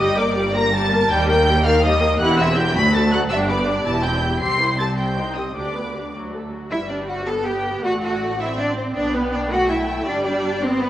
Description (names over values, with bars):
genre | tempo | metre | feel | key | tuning
quick classical-period movement for string orchestra | 108 BPM (dotted quarters) | 6/8 | straight | G major | A4 = 439 Hz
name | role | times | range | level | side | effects
rich symphonic violin section | melody | 0.0-10.9 s | B4 to C7 | -26 LUFS | left 1 dB | none
rich studio violin section | second line | 0.0-10.9 s | B4 to C6 | -25 LUFS | left 1 dB | none
clear symphonic viola section | accompaniment | 0.0-10.9 s | F#3 to C5 | -23 LUFS | equal | none
clear symphonic double bass section | bass | 0.0-10.9 s | E1 to Eb2 | -27 LUFS | right 1 dB | none
rich symphonic cello section | bass | 0.0-10.9 s | C2 to A4 | -23 LUFS | equal | none
room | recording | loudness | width
wet scoring stage reverb, RT60 1.7 s | worn, warbling old tape, cassette tape, warbly pitch drift | -17 LUFS | side -12 dB against mid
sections
0.0-6.7 A section; 6.7-10.9 B section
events
none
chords
0.0 Gm; 1.1 Eb; 2.2 C/E; 2.8 D; 3.3 G; 3.9 C/E; 4.4 C; 5.0 Cm; 5.6 G/D; 6.1 D; 6.7 G; 7.8 D7/A; 9.0 G/B; 10.1 G